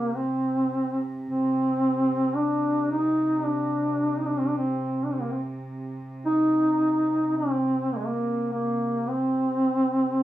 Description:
caucasian folk, Caucasian lament; 54 BPM; 4/4; rubato; C minor; A4 = 442 Hz
mellow duduk; melody; 0.0-10.2 s; Ab3 to Eb4; -23 LUFS; equal
warm chamber cello section; drone; 0.0-10.2 s; C3; -35 LUFS; right 1 dB
moderate studio reverb, RT60 0.5 s; rough home demo mix, small room ambience; -23 LUFS; side -14 dB against mid
0.0-10.2 A section

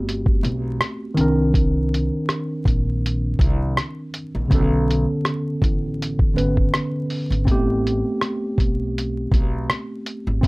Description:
lo-fi hip hop; 81 BPM; 4/4; swing 55% on 16ths; A4 = 440 Hz
mellow tine electric piano; accompaniment; 0.0-10.5 s; C#3 to B4; -23 LUFS; equal; medium stereo tremolo, cassette tape, low-pass filter
upright bass; bass; 0.0-10.5 s; G1 to C2; -23 LUFS; equal
lo-fi sampler-style drum kit; drums; 0.1-10.5 s; hi-hat, kick drum, rim click; -20 LUFS; equal; vintage 12-bit sampler grit
light reverb; vinyl crackle; -18 LUFS; side -25 dB against mid
0.0-10.5 A section
0.0 Am9; 1.2 Cm9; 4.5 Bm9; 7.5 Am9

